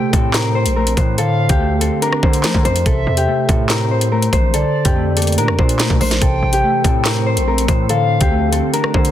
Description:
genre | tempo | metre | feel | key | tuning
hip hop, drill | 143 BPM | 4/4 | half-time | A phrygian | A4 = 440 Hz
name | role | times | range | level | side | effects
concert harp | melody | 0.0-9.1 s | G4 to C5 | -20 LUFS | left 2 dB | none
hollow clarinet-like synth lead | second line | 0.0-8.7 s | D5 to G5 | -23 LUFS | left 3 dB | chorus, phaser, ping-pong delay
mellow electric guitar | accompaniment | 0.0-9.1 s | C3 to C5 | -21 LUFS | right 2 dB | ensemble chorus
distorted 808-style bass | bass | 0.1-9.1 s | A1 to F3 | -19 LUFS | equal | distortion
drill drum kit | drums | 0.1-9.1 s | handclaps, hi-hat, kick drum, rim click, snare drum | -17 LUFS | equal | none
glassy FM pad | sustained chords | 6.6-9.1 s | E3 to A4 | -28 LUFS | right 1 dB | ensemble chorus, built-in reverb
room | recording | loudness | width
little or no reverb | dense, heavily limited modern master | -13 LUFS | side -11 dB against mid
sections
0.0-9.1 A section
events
none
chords
0.0 Am; 1.2 Dm7; 2.9 Am; 4.5 Bbmaj7; 6.2 Am; 7.9 Dm7

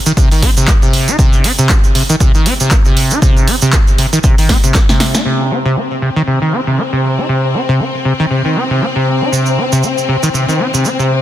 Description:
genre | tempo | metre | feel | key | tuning
acid house | 118 BPM | 4/4 | swing 57% on 16ths | C minor pentatonic | A4 = 444 Hz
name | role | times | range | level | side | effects
liquid acid bass | riff | 0.1-11.2 s | C3 to Eb4 | -14 LUFS | equal | tube saturation, analog chorus, cassette tape, digital delay
punchy analog drum machine | drums | 0.1-5.2 s | handclaps, hi-hat, snare drum | -18 LUFS | right 1 dB | low-pass filter on hats, low-pass filter on snare, low-pass filter on room
tube shaker | percussion | 0.1-5.2, 9.3-11.1 s | none | -21 LUFS | right 6 dB | none
electronic kick drum | drums | 0.2-4.9 s | none | -11 LUFS | equal | none
bright studio string section | sustained chords | 5.3-11.2 s | C4 | -18 LUFS | left 5 dB | sidechain pumping
room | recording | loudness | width
light reverb | dense, heavily limited modern master | -10 LUFS | side -12 dB against mid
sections
0.0-5.3 A section; 5.3-11.2 B section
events
drum fill 4.5-5.3; band accent 5.1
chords
0.0 Cm

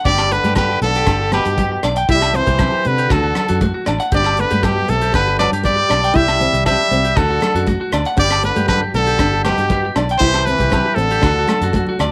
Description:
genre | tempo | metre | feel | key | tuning
highlife guitar band | 118 BPM | 4/4 | straight | G major | A4 = 440 Hz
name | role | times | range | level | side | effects
clean electric guitar | arpeggios | 0.0-12.1 s | F#4 to G5 | -26 LUFS | equal | warbly pitch drift, slapback echo
brilliant trumpet | melody | 0.1-12.0 s | G4 to E5 | -20 LUFS | equal | none
bright trombone | second line | 0.1-12.0 s | B2 to G3 | -28 LUFS | equal | none
nylon-string guitar | accompaniment | 0.1-12.1 s | G3 to E4 | -26 LUFS | equal | none
fingered electric bass | bass | 0.1-12.1 s | G1 to C3 | -23 LUFS | equal | none
tight funk drum kit | drums | 0.1-12.1 s | hi-hat, kick drum, rim click | -25 LUFS | equal | none
congas | percussion | 0.1-12.1 s | none | -30 LUFS | equal | none
agogo bells | percussion | 0.2-12.1 s | none | -30 LUFS | equal | none
room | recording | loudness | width
light reverb, small room ambience | none | -16 LUFS | mono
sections
0.0-12.1 A section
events
drum fill 11.6-12.1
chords
0.1 G; 2.1 C; 3.1 D; 4.1 G; 6.2 C; 7.2 D; 8.2 G; 10.2 C; 11.2 D

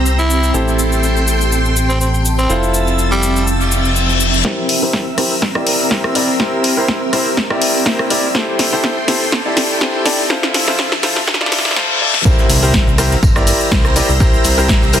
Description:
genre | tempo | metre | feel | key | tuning
piano house | 123 BPM | 4/4 | swing 54% on 16ths | C mixolydian | A4 = 440 Hz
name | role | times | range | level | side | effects
string machine, violins | sustained chords | 0.0-15.0 s | F3 to A6 | -22 LUFS | equal | ensemble chorus, sidechain pumping
bright upright piano | riff | 0.0-15.0 s | E4 to D5 | -19 LUFS | equal | sidechain pumping, low-pass filter, digital delay
fat analog bass | bass | 0.0-4.4, 12.5-15.0 s | F1 to C2 | -16 LUFS | equal | sidechain pumping
granular cloud pad | texture | 0.0-15.0 s | F3 to E6 | -24 LUFS | equal | built-in reverb, sidechain pumping
house drum kit | drums | 0.1-15.0 s | hi-hat, rim click, shaker, snare drum | -17 LUFS | left 1 dB | small room ambience
growling tenor saxophone | melody | 0.2-3.5 s | G3 to E4 | -21 LUFS | equal | digital delay
reverse cymbal, riser and impact | sound effects | 3.7-14.2 s | none | -22 LUFS | left 3 dB | none
electronic kick drum | drums | 4.4-14.8 s | none | -16 LUFS | equal | high-pass filter on kick, small room ambience
crunchy breakbeat drum kit | drums | 12.3-15.0 s | hi-hat, snare drum, tambourine | -28 LUFS | equal | none
room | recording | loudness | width
light reverb | dense, heavily limited modern master, high-pass filter | -12 LUFS | side -9 dB against mid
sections
0.0-4.4 A section; 4.4-12.3 B section; 12.3-15.0 C section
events
reverse cymbal 3.7-4.4, 11.3-12.3; build-up 4.4-12.3; drum fill 4.4-11.8, 11.8-12.3; filter sweep on upright piano 4.4-12.3; filter sweep on string machine 4.4-12.3; drop 12.3-15.0; impact 12.3-14.2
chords
0.0 C7; 0.5 Am7; 2.5 Fmaj7; 4.4 C7; 8.3 Am7; 10.3 Fmaj7; 12.3 C7

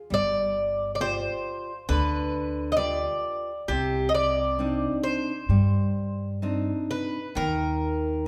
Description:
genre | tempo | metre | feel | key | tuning
fado-style ballad | 66 BPM | 4/4 | rubato | C harmonic minor | A4 = 442 Hz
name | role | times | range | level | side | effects
Irish bouzouki | melody | 0.1-8.3 s | G4 to Eb5 | -30 LUFS | equal | none
nylon-string guitar | accompaniment | 0.1-8.2 s | C3 to D5 | -32 LUFS | equal | none
upright bass | bass | 0.1-8.3 s | G1 to G2 | -31 LUFS | equal | none
room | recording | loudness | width
moderate recital hall reverb, RT60 1.4 s | recorded in a church or concert hall | -27 LUFS | mono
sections
0.0-7.3 A section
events
none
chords
0.1 G7; 3.7 Cmadd9; 7.3 Eb5

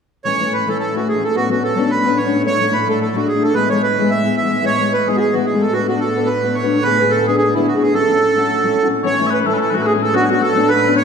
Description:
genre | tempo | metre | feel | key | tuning
celtic folk | 218 BPM | 4/4 | swing 56% on 8ths | A major | A4 = 440 Hz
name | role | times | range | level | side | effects
accordion | melody | 0.2-11.0 s | E4 to E5 | -16 LUFS | right 4 dB | none
fingerpicked steel-string acoustic guitar | accompaniment | 0.2-11.0 s | D3 to B4 | -18 LUFS | left 4 dB | none
muted studio string section | drone | 0.3-11.0 s | A2 to A3 | -26 LUFS | equal | none
mellow small bagpipes | second line | 9.0-11.0 s | F#4 to E5 | -20 LUFS | left 7 dB | none
room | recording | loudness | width
wet recital hall reverb, RT60 1.7 s | recorded in a church or concert hall | -14 LUFS | side -6 dB against mid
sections
0.3-9.0 A section; 9.0-11.0 A section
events
none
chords
0.3 A; 1.3 Bmadd9; 2.4 Dadd9; 3.5 E; 5.7 Bm; 6.8 Asus24; 7.9 A6; 9.0 A; 10.1 Bmadd9

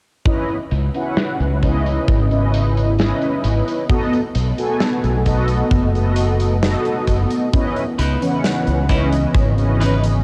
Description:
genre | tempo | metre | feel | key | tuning
vaporwave | 66 BPM | 4/4 | straight | C# minor | A4 = 440 Hz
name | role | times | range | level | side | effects
mellow synth brass | accompaniment | 0.3-10.2 s | E3 to G#5 | -23 LUFS | equal | analog chorus, cassette tape, analog delay
warbly tape-like pad | sustained chords | 1.1-10.2 s | C#3 to D#5 | -30 LUFS | equal | chorus, built-in reverb, phaser, vintage 12-bit sampler grit
big rock drum kit | drums | 0.3-10.2 s | hi-hat, snare drum | -29 LUFS | equal | low-pass filter on hats, low-pass filter on snare, low-pass filter on room
kick drum | drums | 0.3-9.5 s | none | -22 LUFS | equal | none
fretless electric bass | bass | 0.7-10.2 s | F#1 to C#2 | -20 LUFS | equal | ensemble chorus
electric guitar at the edge of break-up | riff | 8.0-10.0 s | D#4 to B4 | -30 LUFS | equal | lush chorus, vintage 12-bit sampler grit, analog delay
room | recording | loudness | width
light reverb, small room ambience | cassette tape | -18 LUFS | mono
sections
0.3-10.2 A section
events
none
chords
0.3 C#m9; 3.9 B7; 7.5 C#m9

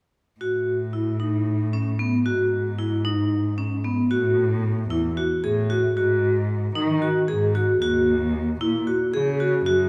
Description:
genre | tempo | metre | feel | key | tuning
contemporary instrumental, chamber music in an uneven meter | 227 BPM (eighths) | 7/8 | straight | A lydian | A4 = 440 Hz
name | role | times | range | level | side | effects
vibraphone with hard mallets | arpeggios | 0.4-9.9 s | B3 to G#4 | -25 LUFS | equal | none
dark cello | bass | 0.4-9.9 s | D#2 to D#3 | -27 LUFS | equal | none
room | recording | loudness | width
wet recital hall reverb, RT60 1.7 s | heard from further back in the room | -23 LUFS | mono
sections
0.4-4.1 A section; 4.1-9.9 B section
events
none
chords
0.4 A5; 2.3 G#7(no3); 4.1 A5; 6.0 G#5; 7.8 D#m7

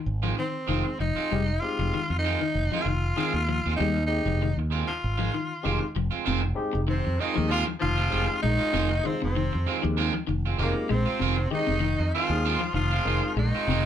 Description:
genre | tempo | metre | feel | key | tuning
afrobeat | 97 BPM | 4/4 | swing 54% on 16ths | F minor | A4 = 440 Hz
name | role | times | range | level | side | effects
electric guitar at the edge of break-up | arpeggios | 0.0-13.9 s | C3 to Ab3 | -32 LUFS | left 6 dB | none
mellow fretless electric bass | bass | 0.1-13.9 s | F1 to F2 | -27 LUFS | equal | none
electric guitar at the edge of break-up | stabs | 0.2-13.9 s | Eb3 to F4 | -31 LUFS | right 7 dB | none
growling tenor saxophone | melody | 0.4-13.9 s | Bb3 to F4 | -29 LUFS | equal | none
barky tine electric piano | accompaniment | 0.7-13.3 s | Ab3 to Bb4 | -33 LUFS | left 3 dB | overdrive
bright trumpet | second line | 6.9-13.9 s | Bb4 to F5 | -36 LUFS | right 4 dB | none
clear baritone saxophone | second line | 6.9-13.9 s | Bb2 to F3 | -37 LUFS | left 2 dB | none
room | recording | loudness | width
wet studio ambience, RT60 0.5 s | band playing live in one room | -24 LUFS | side -10 dB against mid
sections
0.0-6.3 A section; 6.3-13.9 B section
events
none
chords
0.0 Fm7

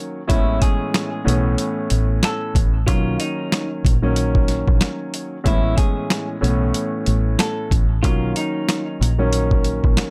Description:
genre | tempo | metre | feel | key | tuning
hip hop, boom-bap hip-hop | 93 BPM | 4/4 | swing 57% on 16ths | A major | A4 = 439 Hz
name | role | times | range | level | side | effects
dark concert grand piano | accompaniment | 0.0-10.1 s | A2 to C#4 | -26 LUFS | equal | cassette tape, high-pass filter, low-pass filter
semi-hollow electric guitar | melody | 0.3-8.8 s | D#4 to A4 | -30 LUFS | equal | high-pass filter, low-pass filter, digital delay
deep dub fingered electric bass | bass | 0.3-10.0 s | A1 to B1 | -22 LUFS | equal | none
boom bap sampler-style drum kit | drums | 0.3-10.1 s | hi-hat, kick drum, snare drum | -21 LUFS | equal | none
room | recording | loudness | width
little or no reverb | none | -20 LUFS | mono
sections
0.0-10.1 A section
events
none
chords
0.3 Amaj9; 2.9 Bmaj9 (rootless); 5.5 Amaj9; 8.0 Bmaj9

